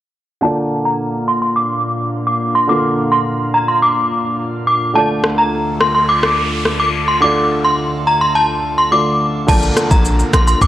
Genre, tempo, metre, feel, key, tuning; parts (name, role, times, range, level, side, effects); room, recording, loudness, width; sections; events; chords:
dancehall; 106 BPM; 4/4; straight; A4 = 439 Hz
synth chime; melody; 0.4-10.7 s; A5 to D6; -15 LUFS; equal; ensemble chorus, low-pass filter
warm baby grand piano; accompaniment; 0.4-10.7 s; D3 to D5; -21 LUFS; right 1 dB; sidechain pumping, low-pass filter
airy breathy pad; sustained chords; 0.4-10.7 s; D2 to F5; -23 LUFS; equal; chorus, sidechain pumping, low-pass filter
noise sweep and downlifter; sound effects; 5.5-10.7 s; -26 LUFS; left 1 dB
afro-pop drum kit; drums; 5.2-10.7 s; crash cymbal, hi-hat, kick drum, rim click, shaker; -17 LUFS; equal; overdrive
hard-hitting 808-style bass; bass; 9.5-10.7 s; Bb1 to C2; -14 LUFS; equal
digital ambience; dry, gritty hardware recording, cassette tape; -13 LUFS; side -13 dB against mid
0.4-9.5 A section; 9.5-10.7 B section
filter sweep 0.4-9.5; noise sweep 5.5-9.5
0.4 Bb; 5.0 Dm; 9.5 Bb